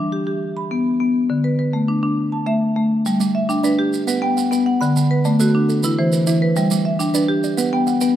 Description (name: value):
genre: southern african traditional, mbira-style interlocking cycle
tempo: 137 BPM (dotted quarters)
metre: 12/8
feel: straight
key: G major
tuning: A4 = 440 Hz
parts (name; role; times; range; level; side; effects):
- marimba with medium hard mallets; arpeggios; 0.0-8.2 s; D3 to B5; -17 LUFS; left 1 dB; none
- maracas; percussion; 3.1-8.1 s; none; -30 LUFS; right 8 dB; none
- kalimba; arpeggios; 3.2-8.2 s; D3 to B5; -23 LUFS; right 6 dB; none
room: moderate plate reverb, RT60 3.2 s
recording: rough home demo mix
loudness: -16 LUFS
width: side -11 dB against mid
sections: 0.0-3.1 A section; 3.1-8.2 B section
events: none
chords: 0.4 N.C.; 1.3 D5; 2.2 A5; 3.1 G; 3.9 Bm; 4.8 D; 5.7 E5; 6.6 G; 7.4 Bm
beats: 0.41 0.85 | 1.30 1.74 2.18 2.62 | 3.06 3.50 3.94 4.37 | 4.81 5.25 5.69 6.12 | 6.56 7.00 7.43 7.87